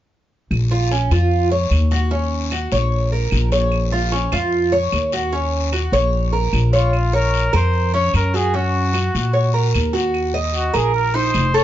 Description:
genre	latin, Cuban son and guajira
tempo	150 BPM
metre	4/4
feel	straight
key	Bb minor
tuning	A4 = 440 Hz
part	upright bass	bass	0.5-11.6 s	F1 to Bb2	-19 LUFS	equal	none
part	claves	percussion	0.5-11.5 s	none	-30 LUFS	right 4 dB	none
part	guiro	percussion	0.5-11.6 s	none	-31 LUFS	left 8 dB	none
part	Cuban tres	arpeggios	0.7-11.6 s	Db4 to Eb5	-20 LUFS	right 2 dB	none
part	breathy trumpet	melody	6.7-11.6 s	F4 to Db5	-21 LUFS	left 1 dB	none
room	light reverb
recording	nothing above 7.5 kHz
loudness	-16 LUFS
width	side -12 dB against mid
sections	0.5-6.9 A section; 6.9-11.6 B section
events	none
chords	0.5 Bbm; 2.1 Ebm7; 3.7 Bbm; 5.3 Ebm7; 6.9 Bbm; 8.5 Gb; 10.1 Ebm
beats	| 0.51 0.91 1.31 1.72 | 2.12 2.52 2.92 3.32 | 3.72 4.12 4.53 4.93 | 5.33 5.73 6.13 6.53 | 6.93 7.34 7.74 8.14 | 8.54 8.94 9.34 9.74 | 10.14 10.54 10.94 11.34

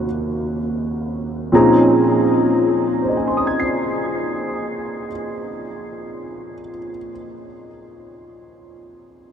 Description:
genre	jazz ballad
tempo	41 BPM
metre	4/4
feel	swing 68% on 8ths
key	Bb minor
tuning	A4 = 439 Hz
part	warm grand piano	solo	0.0-9.3 s	Eb2 to C7	-18 LUFS	equal	analog chorus, diffuse ambient delay
room	wet huge ambient reverb, RT60 8.0 s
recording	dreamy mix soaked in reverb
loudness	-16 LUFS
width	side -8 dB against mid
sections	0.0-1.5 A section; 1.5-7.4 B section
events	slowing down 0.0-1.5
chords	0.0 Ebm7; 1.5 Bbm11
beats	0.08 | 1.52 3.00 4.48 5.95

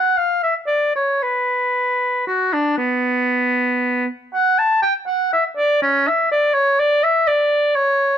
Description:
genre	classical, baroque-style fantasia for unaccompanied oboe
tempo	75-84 BPM (dotted quarters)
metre	12/8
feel	rubato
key	B minor, D major from 4.3 s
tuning	A4 = 440 Hz
part	clear oboe	solo	0.0-8.2 s	B3 to A5	-16 LUFS	equal	none
room	light reverb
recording	dark, warm production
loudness	-16 LUFS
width	side -9 dB against mid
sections	0.0-4.3 A section; 4.3-8.2 A section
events	none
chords	none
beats	0.43 | 1.21 2.00 2.78 3.56 | 4.34 5.08 5.82 6.54 | 7.26 7.98

